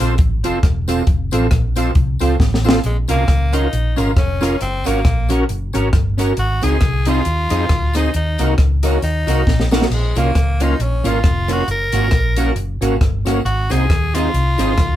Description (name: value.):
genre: ska.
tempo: 136 BPM.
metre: 4/4.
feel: swing 57% on 8ths.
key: Bb minor.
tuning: A4 = 440 Hz.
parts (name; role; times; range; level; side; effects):
electric guitar at the edge of break-up; accompaniment; 0.0-14.7 s; Bb3 to Bb4; -22 LUFS; right 4 dB; dub echo.
overdriven tonewheel organ; stabs; 0.0-14.7 s; C4 to C5; -24 LUFS; left 2 dB; chorus vibrato, slow rotary speaker.
hollow-body short-scale fingered electric bass; bass; 0.0-15.0 s; E1 to F2; -18 LUFS; equal; none.
compact cocktail drum kit; drums; 0.0-14.9 s; crash cymbal, hi-hat, kick drum, rim click, snare drum; -17 LUFS; equal; none.
tambourine; percussion; 0.4-14.7 s; none; -37 LUFS; left 4 dB; none.
raspy tenor saxophone; melody; 2.9-15.0 s; Ab3 to Bb4; -22 LUFS; left 1 dB; none.
room: moderate small room reverb, RT60 0.5 s.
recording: band playing live in one room.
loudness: -14 LUFS.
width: side -12 dB against mid.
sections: 0.0-2.8 A section; 2.8-15.0 B section.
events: drum fill 2.4-2.8, 9.5-9.9.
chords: 0.0 F; 2.8 Bbm; 4.6 Gb; 6.4 Ab; 8.1 Ebm; 9.9 Bbm; 11.7 Gb; 13.5 Ab.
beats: 0.19 0.63 | 1.07 1.52 1.96 2.40 | 2.84 3.28 3.72 4.17 | 4.61 5.05 5.49 5.93 | 6.38 6.82 7.26 7.70 | 8.14 8.59 9.03 9.47 | 9.91 10.36 10.80 11.24 | 11.68 12.12 12.57 13.01 | 13.45 13.89 14.34 14.78.